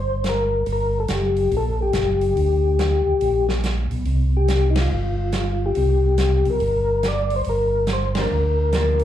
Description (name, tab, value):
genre	soul jazz organ trio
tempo	142 BPM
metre	4/4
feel	swing 65% on 8ths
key	G minor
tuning	A4 = 441 Hz
part	percussive tonewheel organ	melody	0.0-9.0 s	Eb4 to D5	-21 LUFS	left 3 dB	slow rotary speaker, chorus vibrato, slapback echo
part	tonewheel organ	bass	0.0-9.0 s	F#1 to D2	-21 LUFS	right 1 dB	overdrive, chorus vibrato, slow rotary speaker
part	vintage drum kit	drums	0.2-9.0 s	hi-hat, ride cymbal, snare drum	-29 LUFS	right 1 dB	slapback echo
part	hollow-body jazz guitar	accompaniment	8.2-9.0 s	F3 to D4	-28 LUFS	right 4 dB	slapback echo
room	light reverb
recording	live gig heard through the venue's PA, club reverb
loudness	-18 LUFS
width	side -11 dB against mid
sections	0.0-9.0 A section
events	band accent 4.7, 8.1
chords	0.0 C5; 0.7 Gm; 4.1 C5; 7.5 Gm7